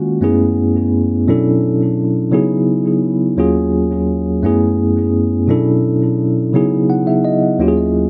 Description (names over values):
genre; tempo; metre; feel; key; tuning
R&B; 57 BPM (dotted quarters); 6/8; straight; unclear; A4 = 440 Hz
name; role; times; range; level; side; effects
tine electric piano; solo; 0.0-8.1 s; Eb2 to Gb5; -15 LUFS; equal; medium tremolo, tape echo
room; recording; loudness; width
moderate plate reverb, RT60 2.6 s; echo-heavy mix; -15 LUFS; mono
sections
0.0-8.1 A section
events
tine electric piano fill 6.5-7.6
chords
0.2 Gbm11; 1.3 Bm11; 2.3 Dbm11; 3.4 Ebm11; 4.4 Gbm11; 5.5 Bm11; 6.5 Dbm11; 7.6 Ebm11